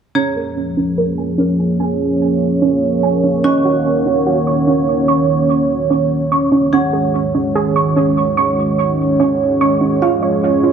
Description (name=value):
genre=hip hop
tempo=146 BPM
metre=4/4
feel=half-time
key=Bb minor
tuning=A4 = 440 Hz
part: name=soft round pluck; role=arpeggios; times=0.1-10.7 s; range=Db4 to Db6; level=-17 LUFS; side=right 3 dB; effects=chorus, low-pass filter, tape echo
part: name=dark analog pad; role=sustained chords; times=0.2-10.7 s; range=Eb3 to Db5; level=-15 LUFS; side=right 2 dB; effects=chorus, low-pass filter
part: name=marimba with medium hard mallets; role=texture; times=0.2-10.7 s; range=Gb4 to Db6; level=-24 LUFS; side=left 3 dB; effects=none
room=wet spring reverb, RT60 2.4 s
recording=echo-heavy mix, small room ambience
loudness=-13 LUFS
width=side -7 dB against mid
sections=0.2-10.7 A section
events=filter sweep 0.2-10.7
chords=0.2 Bbm7; 3.4 Ebm7; 6.7 Ab7sus4; 10.0 Db